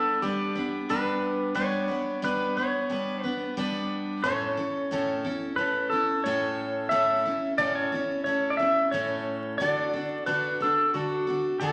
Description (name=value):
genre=rock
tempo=90 BPM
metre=4/4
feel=straight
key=A mixolydian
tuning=A4 = 443 Hz
part: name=pedal steel guitar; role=melody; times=0.0-11.7 s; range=F#4 to E5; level=-29 LUFS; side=equal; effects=none
part: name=picked steel-string acoustic guitar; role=accompaniment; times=0.0-11.7 s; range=A2 to B4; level=-32 LUFS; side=equal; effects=none
room=wet large studio reverb, RT60 1.4 s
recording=vinyl crackle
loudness=-27 LUFS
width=mono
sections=0.0-11.7 A section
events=none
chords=0.0 G; 4.2 A; 9.6 D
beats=0.22 0.89 | 1.55 2.22 2.89 3.56 | 4.23 4.90 5.57 6.24 | 6.91 7.58 8.25 8.92 | 9.59 10.26 10.93 11.60